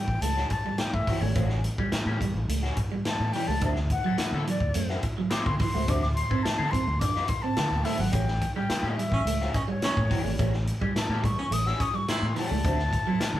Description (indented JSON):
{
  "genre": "funk",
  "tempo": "106 BPM",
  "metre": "4/4",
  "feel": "straight",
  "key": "A mixolydian",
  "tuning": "A4 = 440 Hz",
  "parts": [
    { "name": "breathy concert flute", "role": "melody", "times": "0.0-13.4 s", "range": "C#5 to E6", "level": "-31 LUFS", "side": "left 3 dB", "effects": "none" },
    { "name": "clean electric guitar", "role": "riff", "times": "0.0-13.2 s", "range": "E3 to D4", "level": "-33 LUFS", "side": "right 4 dB", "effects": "none" },
    { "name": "electric guitar at the edge of break-up", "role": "accompaniment", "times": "0.1-13.4 s", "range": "G3 to A4", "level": "-36 LUFS", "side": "left 3 dB", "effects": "wah" },
    { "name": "vintage muted fingered electric bass", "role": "bass", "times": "0.1-13.4 s", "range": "G#1 to D3", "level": "-30 LUFS", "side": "equal", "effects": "none" },
    { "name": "swinging big-band drum kit", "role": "drums", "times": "0.1-13.3 s", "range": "hi-hat, kick drum, snare drum", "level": "-28 LUFS", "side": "equal", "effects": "none" },
    { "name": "mellow baritone saxophone", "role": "second line", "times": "9.1-12.3 s", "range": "C#4 to E4", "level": "-33 LUFS", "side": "right 2 dB", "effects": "none" }
  ],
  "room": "light reverb",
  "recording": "band playing live in one room",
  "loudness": "-24 LUFS",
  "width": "side -13 dB against mid",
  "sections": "0.0-13.4 A section",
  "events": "flute solo 0.0-13.4",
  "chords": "0.0 A6; 3.6 D9; 8.1 A6; 12.6 D9",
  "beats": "0.22 0.79 | 1.36 1.93 2.49 3.06 | 3.62 4.19 4.76 5.32 | 5.89 6.45 7.01 7.58 | 8.14 8.71 9.27 9.83 | 10.39 10.96 11.52 12.08 | 12.64 13.21"
}